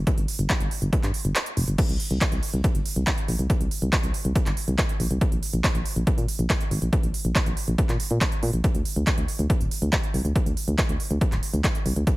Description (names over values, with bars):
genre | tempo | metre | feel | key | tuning
uplifting trance | 140 BPM | 4/4 | straight | unclear | A4 = 437 Hz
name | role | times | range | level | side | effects
solid FM bass | bass | 0.0-12.0 s | D1 to Bb2 | -24 LUFS | equal | tube saturation, sidechain pumping
big-room dance drum kit | drums | 0.1-12.2 s | crash cymbal, handclaps, hi-hat | -29 LUFS | right 1 dB | overdrive, sidechain pumping on hats, sidechain pumping on cymbals
electronic kick drum | drums | 0.1-12.2 s | none | -24 LUFS | equal | overdrive
room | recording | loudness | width
little or no reverb | none | -22 LUFS | side -20 dB against mid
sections
0.0-12.2 A section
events
kick drops out 1.4-1.8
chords
none